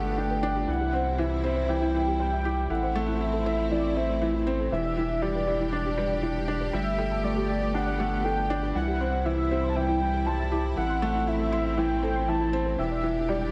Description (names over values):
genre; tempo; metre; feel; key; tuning
piano and strings electronica; 119 BPM; 4/4; straight; unclear; A4 = 441 Hz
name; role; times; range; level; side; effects
warm velvety synth lead; melody; 0.0-13.5 s; D5 to A5; -33 LUFS; equal; chorus, cassette tape, tape echo
rich studio string section; sustained chords; 0.0-13.5 s; C3 to G4; -37 LUFS; equal; none
felt-muted upright piano; riff; 0.0-13.5 s; E3 to G4; -31 LUFS; equal; tape echo
round analog bass; bass; 0.0-13.5 s; E1 to C2; -33 LUFS; equal; none
soft round pluck; arpeggios; 0.2-13.5 s; E4 to C6; -38 LUFS; equal; none
room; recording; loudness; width
moderate lush hall reverb, RT60 1.6 s, small room ambience; none; -27 LUFS; mono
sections
0.0-13.5 A section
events
none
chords
0.0 Gadd9; 0.7 C; 2.7 Am; 4.7 Em7; 6.7 Gadd9; 8.8 C; 10.8 Am; 12.8 Em7